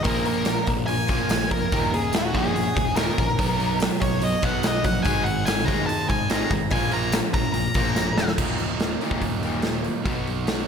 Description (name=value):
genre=classic rock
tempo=144 BPM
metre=4/4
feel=straight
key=Eb minor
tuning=A4 = 439 Hz
part: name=octave-fuzz lead guitar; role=melody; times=0.0-8.3 s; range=Gb4 to Bb5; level=-26 LUFS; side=left 1 dB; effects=distortion
part: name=phased string machine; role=sustained chords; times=0.0-8.4 s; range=B3 to D#5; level=-36 LUFS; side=left 2 dB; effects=none
part: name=crunchy overdriven guitar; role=riff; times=0.0-10.7 s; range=Eb2 to F#4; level=-28 LUFS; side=right 9 dB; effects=spring reverb, slapback echo
part: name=overdriven electric guitar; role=riff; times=0.0-10.7 s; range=Eb2 to B3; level=-31 LUFS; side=left 10 dB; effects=none
part: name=big rock drum kit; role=drums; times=0.0-10.6 s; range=crash cymbal, hi-hat, kick drum, snare drum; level=-25 LUFS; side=left 1 dB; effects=none
part: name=fuzz picked electric bass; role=bass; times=0.1-10.6 s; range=Eb1 to Eb2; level=-30 LUFS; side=equal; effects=overdrive
part: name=tambourine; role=percussion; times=0.5-8.1 s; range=none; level=-40 LUFS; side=left 8 dB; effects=none
room=moderate lush hall reverb, RT60 1.9 s, studio reverb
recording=big arena sound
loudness=-20 LUFS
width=side -7 dB against mid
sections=0.0-8.4 A section; 8.4-10.7 B section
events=lead electric guitar solo 0.0-8.4; drum fill 8.0-8.4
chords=0.1 Bb; 1.7 Ebm7; 3.4 B; 5.1 Ab; 6.7 Bb; 8.4 Ebm; 10.1 B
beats=| 0.06 0.47 0.89 1.30 | 1.72 2.14 2.55 2.97 | 3.39 3.80 4.22 4.63 | 5.05 5.47 5.88 6.30 | 6.71 7.13 7.55 7.96 | 8.38 8.80 9.21 9.63 | 10.05 10.47